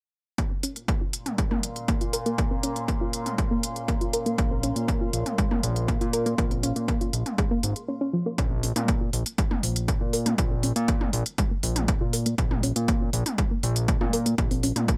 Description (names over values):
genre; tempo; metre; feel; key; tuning
melodic techno; 120 BPM; 4/4; straight; Bb minor; A4 = 440 Hz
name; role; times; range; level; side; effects
soft round pluck; arpeggios; 0.4-15.0 s; F3 to Bb4; -32 LUFS; equal; chorus, sidechain pumping, digital delay
analog drone; drone; 1.1-7.9 s; Bb2 to Bb3; -41 LUFS; equal; chorus, sidechain pumping
electronic kick drum; drums; 0.4-15.0 s; none; -28 LUFS; equal; none
techno drum kit; drums; 0.4-15.0 s; hi-hat, toms; -33 LUFS; equal; none
warbly tape-like pad; texture; 1.7-7.9 s; Db4 to C6; -40 LUFS; equal; chorus, built-in reverb, phaser, sidechain pumping
fat analog bass; bass; 4.4-15.0 s; Ab1 to Bb2; -30 LUFS; equal; sidechain pumping
room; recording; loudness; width
little or no reverb; none; -26 LUFS; mono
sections
0.4-8.4 A section; 8.4-15.0 B section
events
fade-in on ambient pad 0.4-8.4; filter sweep on synth arpeggio sound 0.4-8.4, 8.4-15.0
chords
0.4 Bbmadd9; 8.4 Bb5